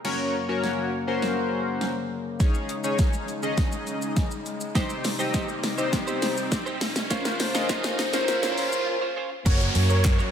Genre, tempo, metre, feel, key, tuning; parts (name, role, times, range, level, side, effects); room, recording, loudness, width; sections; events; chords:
dance-pop; 102 BPM; 4/4; straight; A4 = 441 Hz
chorused polysynth; accompaniment; 0.0-10.1 s; Bb3 to Eb5; -29 LUFS; left 2 dB; sidechain pumping
mellow brass ensemble; sustained chords; 0.0-10.3 s; Gb2 to C5; -31 LUFS; left 1 dB; sidechain pumping
deep house drum kit; drums; 0.0-10.3 s; crash cymbal, handclaps, hi-hat, kick drum, shaker, snare drum; -26 LUFS; equal
riser and downlifter; sound effects; 2.2-10.3 s; -33 LUFS; equal
twelve-string electric guitar; riff; 4.7-10.3 s; Db4 to Db5; -34 LUFS; right 5 dB; analog chorus
filtered supersaw swell; melody; 9.5-10.0 s; Db5; -32 LUFS; right 1 dB; sidechain pumping
vintage muted fingered electric bass; bass; 9.5-10.2 s; Gb1 to Gb2; -22 LUFS; equal; sidechain pumping
moderate lush hall reverb, RT60 2.0 s; dreamy mix soaked in reverb, high-pass filter; -23 LUFS; side -8 dB against mid
0.0-9.5 A section
build-up 0.0-9.5; drum fill 0.0-8.9; filter sweep 0.0-9.5; riser 2.2-9.5; break 8.9-9.5
0.0 Gb; 2.4 Dbsus2; 4.8 Cm; 7.1 Bbmadd9; 9.5 Gb